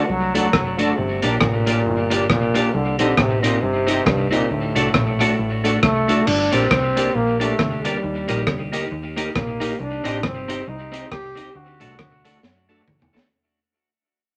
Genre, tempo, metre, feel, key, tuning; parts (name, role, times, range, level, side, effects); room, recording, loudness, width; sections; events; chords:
ska; 136 BPM; 4/4; swing 58% on 8ths; G harmonic minor; A4 = 440 Hz
warm trombone; melody; 0.0-12.8 s; G2 to G4; -25 LUFS; equal; tube saturation
electric guitar at the edge of break-up; accompaniment; 0.0-13.3 s; A3 to G4; -27 LUFS; equal; tape echo
percussive tonewheel organ; stabs; 0.0-13.3 s; D4 to Eb5; -29 LUFS; equal; chorus vibrato, slow rotary speaker
deep dub fingered electric bass; bass; 0.0-13.3 s; F#1 to F#2; -28 LUFS; equal
crunchy breakbeat drum kit; drums; 0.3-13.3 s; crash cymbal, hi-hat, kick drum, rim click, snare drum, toms; -25 LUFS; equal
wet club reverb, RT60 0.7 s; -20 LUFS; mono
0.0-6.3 A section; 6.3-13.3 B section
fade-out 6.3-13.3; drum fill 12.4-13.3
0.0 D; 1.0 Gm; 2.7 Cm; 4.5 D; 6.3 Gm; 8.0 Eb; 9.8 Cm; 11.6 D